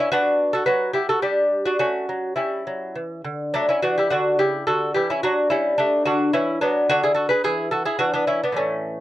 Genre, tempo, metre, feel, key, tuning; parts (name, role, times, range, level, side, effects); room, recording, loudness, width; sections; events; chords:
classical, baroque-style dance for lute; 106 BPM; 3/4; uneven beats, rubato; D major; A4 = 442 Hz
lute; solo; 0.0-9.0 s; A2 to B4; -19 LUFS; equal
light reverb; -19 LUFS; side -14 dB against mid
0.0-9.0 A section
0.1 Bm; 1.2 G5; 1.8 A; 3.5 D; 5.2 D/F#; 6.9 D69; 7.4 Eadd9; 8.0 E5